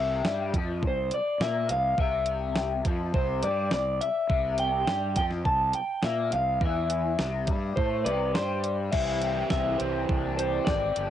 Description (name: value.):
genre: indie rock.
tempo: 104 BPM.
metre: 4/4.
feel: straight.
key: C major.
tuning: A4 = 440 Hz.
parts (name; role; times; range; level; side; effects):
electric guitar through a small old amp; melody; 0.0-11.1 s; B4 to A5; -28 LUFS; left 1 dB; spring reverb, cassette tape, tape echo.
raw garage guitar; riff; 0.0-11.1 s; C3 to G4; -34 LUFS; left 8 dB; overdrive, phaser.
fuzz fingered electric bass; bass; 0.0-11.1 s; G1 to Bb2; -32 LUFS; right 1 dB; overdrive.
clean 12-bit digital drum machine; drums; 0.2-11.1 s; crash cymbal, hi-hat, kick drum, snare drum; -29 LUFS; right 1 dB; cassette tape.
raw garage guitar; riff; 8.9-11.1 s; E3 to G4; -33 LUFS; right 10 dB; overdrive, ensemble chorus.
room: light reverb.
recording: home recording on cassette, nothing above 10.7 kHz.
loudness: -25 LUFS.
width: side -10 dB against mid.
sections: 0.0-8.9 A section; 8.9-11.1 B section.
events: none.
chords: 0.0 C; 8.9 Cadd9.